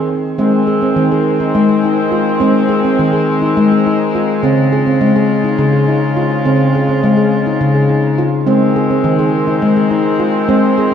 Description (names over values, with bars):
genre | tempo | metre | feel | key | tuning
world meditative, meditative tuned percussion | 208 BPM (eighths) | 7/8 | straight | Ab major | A4 = 443 Hz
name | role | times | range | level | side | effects
clear woodwind section | sustained chords | 0.0-10.9 s | Db3 to F4 | -19 LUFS | right 1 dB | shimmer reverb
handpan | arpeggios | 0.0-10.9 s | Db3 to Ab4 | -11 LUFS | left 1 dB | diffuse ambient delay, shimmer reverb
room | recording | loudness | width
wet echo chamber reverb, RT60 1.8 s | dark, warm production | -11 LUFS | side -8 dB against mid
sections
0.4-10.9 A section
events
none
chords
0.4 Ab; 4.4 Db; 8.5 Ab